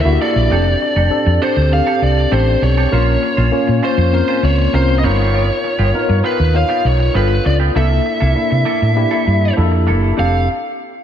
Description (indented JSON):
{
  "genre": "pop",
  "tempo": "99 BPM",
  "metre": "4/4",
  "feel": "straight",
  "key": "F major",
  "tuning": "A4 = 441 Hz",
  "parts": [
    { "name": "biting lead guitar", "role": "melody", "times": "0.0-10.5 s", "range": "B4 to F5", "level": "-19 LUFS", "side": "equal", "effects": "overdrive, analog delay" },
    { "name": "mellow tine electric piano", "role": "accompaniment", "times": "0.0-10.5 s", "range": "Bb3 to Db5", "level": "-18 LUFS", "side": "left 2 dB", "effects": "medium stereo tremolo, lush chorus" },
    { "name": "hollow-body short-scale fingered electric bass", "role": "bass", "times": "0.0-10.5 s", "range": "F1 to C3", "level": "-14 LUFS", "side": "equal", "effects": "none" },
    { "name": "semi-hollow electric guitar", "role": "riff", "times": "0.1-10.4 s", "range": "Bb3 to C5", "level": "-25 LUFS", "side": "right 4 dB", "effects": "wide subtle chorus" }
  ],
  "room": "moderate lush hall reverb, RT60 2.2 s",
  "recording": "dreamy mix soaked in reverb",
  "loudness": "-12 LUFS",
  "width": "side -9 dB against mid",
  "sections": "0.5-10.2 A section",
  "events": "none",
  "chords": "0.0 C13 (rootless); 0.5 F69; 2.9 Bbmadd9; 5.0 G7alt; 7.2 G7; 7.8 C13; 10.2 F69"
}